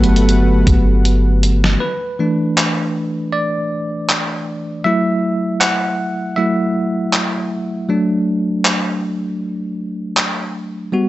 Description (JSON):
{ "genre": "contemporary R&B", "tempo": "79 BPM", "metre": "4/4", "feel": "swing 54% on 16ths", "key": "F# phrygian", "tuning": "A4 = 440 Hz", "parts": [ { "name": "bell-like tine electric piano", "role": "accompaniment", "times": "0.0-11.1 s", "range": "E3 to F#5", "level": "-17 LUFS", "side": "equal", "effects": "medium stereo tremolo" }, { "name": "warm analog pad", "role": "sustained chords", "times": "0.0-1.8 s", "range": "D3 to F#5", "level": "-25 LUFS", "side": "left 2 dB", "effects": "chorus, sidechain pumping" }, { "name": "long sustained 808-style bass", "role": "bass", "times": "0.0-1.8 s", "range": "G1", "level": "-14 LUFS", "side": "equal", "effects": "none" }, { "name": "detuned 8-bit digital drum machine", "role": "drums", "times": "0.0-10.4 s", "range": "handclaps, hi-hat, kick drum, snare drum", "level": "-17 LUFS", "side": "equal", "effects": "none" }, { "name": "glassy synth bell", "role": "texture", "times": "0.0-0.6 s", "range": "none", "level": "barely audible", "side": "none", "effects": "none" } ], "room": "little or no reverb", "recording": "dry, gritty hardware recording, nothing above 8.0 kHz", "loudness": "-15 LUFS", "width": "side -16 dB against mid", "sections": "0.0-1.8 A section; 1.8-11.1 B section", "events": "tine electric piano solo 0.0-1.8, 1.8-11.1; drum fill 1.0-1.8", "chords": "0.0 Gmaj9; 1.8 E7sus4; 4.8 F#m7; 7.9 F#m" }